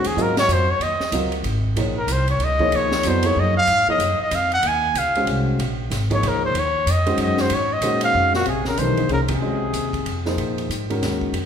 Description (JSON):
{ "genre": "modal jazz", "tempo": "188 BPM", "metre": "3/4", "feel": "swing 62% on 8ths", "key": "Eb dorian", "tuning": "A4 = 441 Hz", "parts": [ { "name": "warm trumpet", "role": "melody", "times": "0.0-10.2 s", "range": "Gb4 to Ab5", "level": "-21 LUFS", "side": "equal", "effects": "none" }, { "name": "dark concert grand piano", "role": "accompaniment", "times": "0.0-11.3 s", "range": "Eb3 to F5", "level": "-25 LUFS", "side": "equal", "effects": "none" }, { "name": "upright bass", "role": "bass", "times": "0.0-11.5 s", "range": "Ab1 to Bb2", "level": "-24 LUFS", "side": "equal", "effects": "none" }, { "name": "open jazz drum kit", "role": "drums", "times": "0.0-11.4 s", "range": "hi-hat, kick drum, ride cymbal, snare drum", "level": "-29 LUFS", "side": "right 1 dB", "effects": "none" }, { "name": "dark trombone", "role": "second line", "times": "8.3-10.2 s", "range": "Bb2 to Eb3", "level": "-26 LUFS", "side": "left 6 dB", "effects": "none" } ], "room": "wet recital hall reverb, RT60 1.8 s", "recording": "recorded in a church or concert hall", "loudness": "-18 LUFS", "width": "side -8 dB against mid", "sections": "0.8-8.5 A section; 8.5-11.5 B section", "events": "trumpet solo 0.0-8.5; band accent 9.3", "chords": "0.0 Ebm11; 0.8 Eb9sus4; 8.5 Bbm11" }